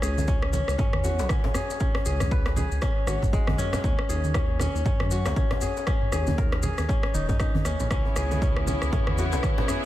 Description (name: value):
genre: afro house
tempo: 118 BPM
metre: 4/4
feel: swing 59% on 16ths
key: C# dorian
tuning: A4 = 440 Hz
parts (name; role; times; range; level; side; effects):
- kora; arpeggios; 0.0-9.9 s; G#3 to B4; -30 LUFS; left 2 dB; sidechain pumping, ping-pong delay
- dark detuned saw bass; bass; 0.0-9.4 s; D#1 to F#2; -28 LUFS; equal; tube saturation, sidechain pumping
- house drum kit; drums; 0.0-9.8 s; rim click, toms; -33 LUFS; equal; none
- maracas; percussion; 0.0-9.8 s; none; -40 LUFS; left 4 dB; none
- congas; percussion; 0.2-9.7 s; none; -33 LUFS; right 3 dB; none
- djembe; percussion; 0.2-9.8 s; none; -36 LUFS; left 3 dB; none
- electronic kick drum; drums; 0.3-9.6 s; none; -26 LUFS; equal; none
- rich chamber string section; sustained chords; 7.9-9.9 s; C#3 to E4; -31 LUFS; left 1 dB; sidechain pumping
room: light reverb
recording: none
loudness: -22 LUFS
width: side -14 dB against mid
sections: 0.0-9.9 A section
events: none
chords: 0.0 C#7(no3); 3.8 D#m7; 7.9 C#m7